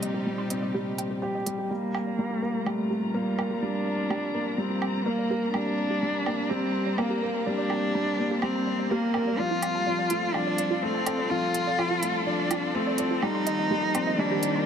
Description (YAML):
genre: piano and strings electronica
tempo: 125 BPM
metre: 4/4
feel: straight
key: G minor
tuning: A4 = 440 Hz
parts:
  - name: dark cello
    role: melody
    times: 0.0-14.7 s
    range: G3 to F4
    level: -28 LUFS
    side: equal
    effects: low-pass filter
  - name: warm studio string section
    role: sustained chords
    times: 0.0-14.7 s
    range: Bb2 to Bb5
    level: -35 LUFS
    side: left 1 dB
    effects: low-pass filter
  - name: warbly dusty pluck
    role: arpeggios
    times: 0.0-14.6 s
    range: F4 to C6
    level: -36 LUFS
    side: right 6 dB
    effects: none
  - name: dark upright piano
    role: riff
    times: 0.0-14.7 s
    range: F3 to C5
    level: -29 LUFS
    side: left 1 dB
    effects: ping-pong delay
  - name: electronic hi-hat and woodblock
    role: drums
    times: 0.0-14.5 s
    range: none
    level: -33 LUFS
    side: right 4 dB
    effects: overdrive
  - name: warm sub bass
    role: bass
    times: 1.7-14.7 s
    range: none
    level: barely audible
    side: none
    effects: none
room: moderate huge ambient reverb, RT60 7.2 s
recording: none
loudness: -25 LUFS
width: side -8 dB against mid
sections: 0.0-1.7 A section; 1.7-14.7 B section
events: build-up 1.7-14.7; filter sweep on cello 1.7-14.7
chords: 0.0 Cm; 1.7 Gm; 9.4 Dm; 13.2 Cm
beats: 0.27 0.74 1.23 | 1.71 2.19 2.67 3.15 | 3.62 4.11 4.58 5.07 | 5.54 6.03 6.50 6.99 | 7.46 7.95 8.43 8.90 | 9.38 9.87 10.35 10.82 | 11.30 11.79 12.27 12.74 | 13.22 13.71 14.19